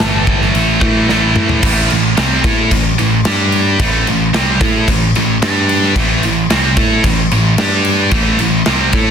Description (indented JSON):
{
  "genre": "hard rock",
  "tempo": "111 BPM",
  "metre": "4/4",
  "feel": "straight",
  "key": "A minor",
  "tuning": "A4 = 440 Hz",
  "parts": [
    { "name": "lightly driven lead guitar", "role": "melody", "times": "0.0-0.5 s", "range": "A5", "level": "-24 LUFS", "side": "left 7 dB", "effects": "slapback echo" },
    { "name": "scooped high-gain guitar", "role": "riff", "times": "0.0-9.1 s", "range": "A2 to A4", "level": "-13 LUFS", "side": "right 1 dB", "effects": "distortion" },
    { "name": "picked electric bass", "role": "bass", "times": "0.0-9.1 s", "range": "G1 to A2", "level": "-17 LUFS", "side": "equal", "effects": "none" },
    { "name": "big rock drum kit", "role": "drums", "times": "0.0-9.1 s", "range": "crash cymbal, kick drum, snare drum, toms", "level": "-16 LUFS", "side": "equal", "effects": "none" }
  ],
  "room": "light reverb, small room ambience",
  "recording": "dense, heavily limited modern master",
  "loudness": "-10 LUFS",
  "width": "side -7 dB against mid",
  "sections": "0.0-1.6 A section; 1.6-9.1 B section",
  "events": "drum fill 1.1-1.6",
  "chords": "0.0 A5; 1.6 Am; 3.2 G5; 3.8 Am; 5.4 G5; 6.0 Am; 7.6 G5; 8.1 Am",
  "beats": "0.00 0.54 1.08 | 1.62 2.16 2.71 3.25 | 3.79 4.33 4.87 5.42 | 5.96 6.50 7.04 7.58 | 8.12 8.67"
}